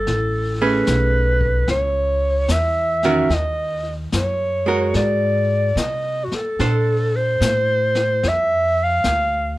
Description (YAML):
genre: jazz ballad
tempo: 73 BPM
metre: 4/4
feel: swing 67% on 8ths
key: unclear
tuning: A4 = 440 Hz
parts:
  - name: breathy clarinet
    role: melody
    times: 0.0-9.6 s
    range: Gb4 to F5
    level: -20 LUFS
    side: equal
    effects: none
  - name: upright bass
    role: bass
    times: 0.0-9.6 s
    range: A1 to C3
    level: -22 LUFS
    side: equal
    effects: none
  - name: jazz brush drum kit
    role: drums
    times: 0.1-9.6 s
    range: brushed snare drum, hi-hat, kick drum, snare drum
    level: -28 LUFS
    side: left 3 dB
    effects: none
  - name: archtop guitar, miked and amplified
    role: accompaniment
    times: 0.6-7.9 s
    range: Eb3 to C5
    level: -21 LUFS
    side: right 3 dB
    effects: none
room: little or no reverb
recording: close, detailed microphones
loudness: -17 LUFS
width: side -17 dB against mid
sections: 0.0-9.6 A section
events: none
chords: 0.1 Amaj9; 3.3 Ebm7; 4.9 Ab9; 6.6 Bbmaj9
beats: | 0.07 0.88 1.68 2.49 | 3.31 4.12 4.94 5.77 | 6.59 7.41 8.23 9.05